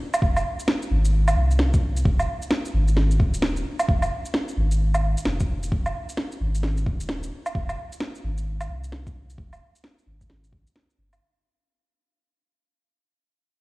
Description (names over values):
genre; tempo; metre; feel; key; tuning
future garage; 131 BPM; 4/4; swing 63% on 16ths; F minor; A4 = 439 Hz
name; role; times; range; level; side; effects
electronic shaker, woodblock and snare drum; drums; 0.1-11.2 s; none; -27 LUFS; right 1 dB; overdrive, small room reverb
soft dub sub bass; bass; 0.2-11.2 s; Eb1 to C2; -23 LUFS; equal; sidechain pumping
electronic kick drum; drums; 0.2-10.6 s; none; -23 LUFS; equal; overdrive, small room reverb
room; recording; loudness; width
light reverb, digital ambience; played on a big sound system in a bare room, stone room reverb; -21 LUFS; side -22 dB against mid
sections
0.0-11.2 A section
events
fade-out 3.9-11.2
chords
none